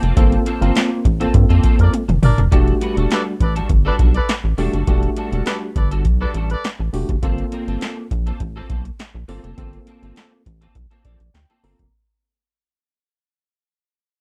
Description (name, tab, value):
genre	early-eighties boogie funk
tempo	102 BPM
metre	4/4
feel	straight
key	unclear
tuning	A4 = 440 Hz
part	electric guitar at the edge of break-up	riff	0.0-11.8 s	G3 to B4	-31 LUFS	equal	ensemble chorus
part	rubbery square bass	bass	0.0-11.9 s	E1 to G2	-20 LUFS	equal	none
part	electro analog drum machine	drums	0.0-11.9 s	handclaps, hi-hat, kick drum, snare drum, toms	-20 LUFS	equal	none
part	tine electric piano	accompaniment	0.2-11.9 s	A3 to Bb5	-25 LUFS	equal	overdrive
part	clear horn section	second line	1.8-6.7 s	D4 to D5	-27 LUFS	equal	plate reverb
room	little or no reverb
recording	dark, warm production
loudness	-18 LUFS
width	mono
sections	0.0-2.5 A section; 2.5-11.9 B section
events	band accent 0.2-2.5; drum fill 1.9-2.5; fade-out 2.5-11.9; tine electric piano fill 10.8-11.9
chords	0.0 Gm11; 2.5 Em11; 7.2 Gm11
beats	| 0.17 0.76 1.34 1.93 | 2.52 3.11 3.70 4.29 | 4.87 5.46 6.05 6.64 | 7.23 7.82 8.40 8.99 | 9.58 10.17 10.76 11.35